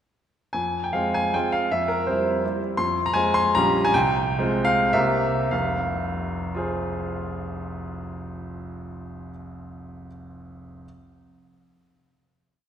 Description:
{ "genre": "classical, romantic triple-time dance for piano with dotted rhythms", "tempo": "96-174 BPM", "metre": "3/4", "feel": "rubato", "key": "F minor", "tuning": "A4 = 441 Hz", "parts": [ { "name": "clear grand piano", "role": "solo", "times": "0.5-10.9 s", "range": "F1 to C6", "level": "-22 LUFS", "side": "equal", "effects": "none" } ], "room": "wet church reverb, RT60 3.1 s", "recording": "recorded in a church or concert hall", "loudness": "-21 LUFS", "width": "side -9 dB against mid", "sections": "0.5-5.5 A section; 5.5-8.6 final chord", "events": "slowing down 2.2-5.5", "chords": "0.5 Fm; 1.7 C/F; 2.8 Fm; 3.6 Gdim/Bb; 4.0 Fm/C; 5.0 C7; 5.5 Fm" }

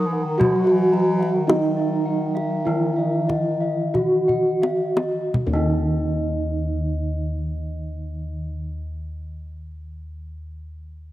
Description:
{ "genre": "Javanese gamelan", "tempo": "41-59 BPM", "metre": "4/4", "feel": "straight", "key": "unclear", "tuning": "A4 = 440 Hz", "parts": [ { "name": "gamelan-type bronze metallophone", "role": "melody", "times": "0.0-8.7 s", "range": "Eb4 to Bb4", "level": "-22 LUFS", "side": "right 1 dB", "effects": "cassette tape" }, { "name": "warm bass clarinet", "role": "second line", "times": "0.0-4.1 s", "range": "Eb3 to Gb3", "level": "-27 LUFS", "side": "left 2 dB", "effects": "cassette tape" }, { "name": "gamelan-type bronze metallophone", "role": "accompaniment", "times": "0.0-8.7 s", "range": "Eb3 to Eb4", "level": "-28 LUFS", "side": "right 2 dB", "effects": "cassette tape" }, { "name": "gamelan-type bossed gongs", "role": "arpeggios", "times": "0.0-8.7 s", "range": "Eb5 to Bb5", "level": "-33 LUFS", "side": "left 3 dB", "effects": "cassette tape" }, { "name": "gamelan-type bronze metallophone", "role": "arpeggios", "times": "0.0-8.7 s", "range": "Eb5 to Eb6", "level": "-31 LUFS", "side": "equal", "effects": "cassette tape" }, { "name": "gamelan-type bossed gongs", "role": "bass", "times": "0.0-8.6 s", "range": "Eb2 to Gb4", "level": "-27 LUFS", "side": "equal", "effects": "none" }, { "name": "kendang", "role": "percussion", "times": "0.4-6.0 s", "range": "none", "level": "-24 LUFS", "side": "left 1 dB", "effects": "none" } ], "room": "moderate lush hall reverb, RT60 2.4 s", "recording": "home recording on cassette", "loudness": "-19 LUFS", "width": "side -14 dB against mid", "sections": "0.0-5.3 A section; 5.3-11.1 B section", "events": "slowing down 0.0-5.3; drum fill 4.3-5.3", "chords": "none" }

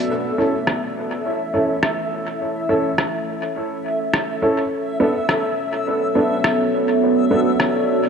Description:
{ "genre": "ambient dub", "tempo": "104 BPM", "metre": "4/4", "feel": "swing 56% on 16ths", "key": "unclear", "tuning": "A4 = 440 Hz", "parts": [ { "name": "deep dark ambient pad", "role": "sustained chords", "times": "0.0-8.1 s", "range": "B3 to D5", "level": "-22 LUFS", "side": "right 1 dB", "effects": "chorus, built-in reverb" }, { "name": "backwards swelling texture", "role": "texture", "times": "0.0-8.1 s", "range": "E5", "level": "-25 LUFS", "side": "left 2 dB", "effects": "built-in reverb" }, { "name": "dark upright piano", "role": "stabs", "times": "0.4-7.5 s", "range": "B3 to A4", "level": "-22 LUFS", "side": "right 1 dB", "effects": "low-pass filter, dub echo" }, { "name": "electronic rim click", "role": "drums", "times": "0.7-7.7 s", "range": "none", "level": "-24 LUFS", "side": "equal", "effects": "overdrive, low-pass filter on hats, low-pass filter on snare, low-pass filter on perc, low-pass filter on room, dub echo" } ], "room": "moderate echo chamber reverb, RT60 2.3 s", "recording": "echo-heavy mix", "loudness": "-18 LUFS", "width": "side -6 dB against mid", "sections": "0.1-8.1 A section", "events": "none", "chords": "0.1 A; 4.7 Bm7" }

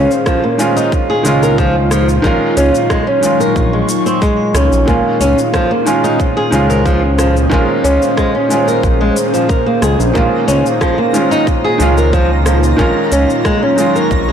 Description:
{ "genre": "organic downtempo", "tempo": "91 BPM", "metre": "4/4", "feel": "straight", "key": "Bb minor", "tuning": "A4 = 440 Hz", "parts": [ { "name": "felt-muted upright piano", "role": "accompaniment", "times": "0.0-14.3 s", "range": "Eb3 to F4", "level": "-17 LUFS", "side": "right 2 dB", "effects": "sidechain pumping, tape echo" }, { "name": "airy breathy pad", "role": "sustained chords", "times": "0.0-14.3 s", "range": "Bb2 to Db6", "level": "-18 LUFS", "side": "equal", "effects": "chorus, sidechain pumping" }, { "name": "flamenco guitar", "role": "arpeggios", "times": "0.0-14.3 s", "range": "F3 to Bb4", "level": "-15 LUFS", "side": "equal", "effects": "vintage 12-bit sampler grit, tape echo" }, { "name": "smooth synth bass", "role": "bass", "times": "0.0-14.3 s", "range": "Bb1 to Db2", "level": "-14 LUFS", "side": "equal", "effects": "tube saturation, sidechain pumping" }, { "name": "organic electronic drum kit", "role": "drums", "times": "0.1-14.2 s", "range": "cabasa, hi-hat, rim click", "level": "-23 LUFS", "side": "equal", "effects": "overdrive" }, { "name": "electronic kick drum", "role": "drums", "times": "0.3-14.2 s", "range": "none", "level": "-18 LUFS", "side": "equal", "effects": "overdrive" }, { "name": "twinkling granular texture", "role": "texture", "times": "10.3-14.3 s", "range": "Bb5", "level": "-27 LUFS", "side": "right 1 dB", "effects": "built-in reverb" } ], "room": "moderate echo chamber reverb, RT60 2.5 s", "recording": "blown-out, overdriven recording, overdrive", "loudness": "-10 LUFS", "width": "side -8 dB against mid", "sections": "0.0-14.3 A section", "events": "none", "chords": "0.0 Dbmaj7/Bb; 2.2 Ebm9/Bb; 4.9 Bbm9; 12.8 Ebm9/Bb" }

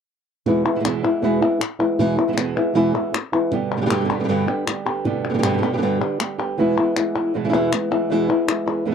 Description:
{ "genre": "flamenco", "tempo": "157 BPM", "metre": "4/4", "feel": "straight", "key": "unclear", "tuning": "A4 = 445 Hz", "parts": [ { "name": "flamenco guitar", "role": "melody", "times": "0.5-8.9 s", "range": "E2 to G4", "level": "-19 LUFS", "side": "left 1 dB", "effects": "none" }, { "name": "flamenco guitar", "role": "stabs", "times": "0.5-8.9 s", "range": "E2 to G4", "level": "-25 LUFS", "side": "right 7 dB", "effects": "none" }, { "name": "palmas hand claps", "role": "percussion", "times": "0.7-8.9 s", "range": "none", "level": "-26 LUFS", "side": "left 7 dB", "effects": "none" } ], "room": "light reverb", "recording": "dry, close 1970s-style studio recording", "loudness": "-18 LUFS", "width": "side -7 dB against mid", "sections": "0.5-8.9 A section", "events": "none", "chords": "0.5 E; 3.5 G; 6.6 E" }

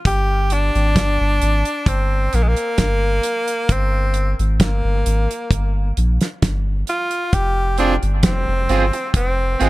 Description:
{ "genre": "dub reggae", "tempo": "66 BPM", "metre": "4/4", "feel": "straight", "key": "G phrygian", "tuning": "A4 = 441 Hz", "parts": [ { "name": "edgy tenor saxophone", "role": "melody", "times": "0.1-9.7 s", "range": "Ab3 to G4", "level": "-21 LUFS", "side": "equal", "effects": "dub echo" }, { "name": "soft dub sub bass", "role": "bass", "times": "0.1-9.7 s", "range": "F1 to Bb1", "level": "-18 LUFS", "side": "equal", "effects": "none" }, { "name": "damped 70s drum kit", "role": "drums", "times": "0.1-9.7 s", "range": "hi-hat, kick drum, snare drum", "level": "-19 LUFS", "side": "equal", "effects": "none" }, { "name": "electric guitar at the edge of break-up", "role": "accompaniment", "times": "7.8-9.7 s", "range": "C4 to Ab4", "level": "-22 LUFS", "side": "right 6 dB", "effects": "dub echo" } ], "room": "studio reverb", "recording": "none", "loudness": "-16 LUFS", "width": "side -18 dB against mid", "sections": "0.0-9.7 A section", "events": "break 0.1-7.3", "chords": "0.1 Gm; 7.3 Fm" }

